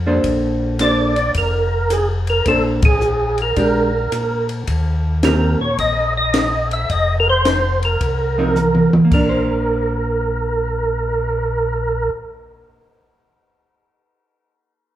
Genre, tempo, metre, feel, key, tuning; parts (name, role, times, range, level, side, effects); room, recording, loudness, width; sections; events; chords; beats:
soul jazz organ trio; 108 BPM; 4/4; swing 67% on 8ths; Bb major; A4 = 440 Hz
mellow tonewheel organ; bass; 0.0-12.1 s; F1 to Bb2; -21 LUFS; left 1 dB; slow rotary speaker
vintage hollow-body jazz guitar; accompaniment; 0.1-12.9 s; Eb3 to C5; -20 LUFS; right 1 dB
compact cocktail drum kit; drums; 0.2-11.2 s; crash cymbal, cymbal swell, hi-hat, kick drum, ride cymbal, snare drum, toms; -21 LUFS; equal
percussive tonewheel organ; melody; 0.8-12.1 s; Ab4 to E5; -18 LUFS; right 1 dB; slow rotary speaker, chorus vibrato
moderate large studio reverb, RT60 1.4 s; band playing live in one room; -15 LUFS; side -12 dB against mid
0.0-4.7 A section; 4.7-9.1 B section; 9.1-11.3 C section
band accent 2.7; drum fill 8.6-9.1
0.2 Bbmaj9; 3.6 Bb6; 4.7 Eb6; 6.9 F7sus4; 9.1 Bbadd9
| 0.23 0.79 1.34 1.90 | 2.45 3.01 3.56 4.12 | 4.67 5.23 5.78 6.34 | 6.89 7.45 8.00 8.56 | 9.11 9.67 10.22 10.78